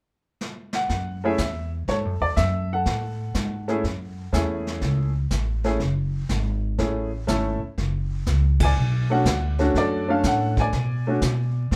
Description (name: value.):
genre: jazz piano trio.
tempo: 122 BPM.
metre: 4/4.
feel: swing 68% on 8ths.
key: F# minor.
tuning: A4 = 440 Hz.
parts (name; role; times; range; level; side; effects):
jazz brush drum kit; drums; 0.4-11.8 s; brushed snare drum, hi-hat, kick drum, ride cymbal, snare drum; -31 LUFS; equal; none.
clear baby grand piano; melody; 0.7-11.8 s; A3 to G#5; -27 LUFS; equal; none.
upright bass; bass; 0.9-11.8 s; F#1 to B2; -26 LUFS; equal; none.
room: moderate club reverb, RT60 0.5 s.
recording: none.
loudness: -24 LUFS.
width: mono.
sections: 0.9-11.8 A section.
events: drum fill 0.4-0.9; band accent 8.5.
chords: 0.0 N.C.; 0.9 F#m9; 8.8 Bm7.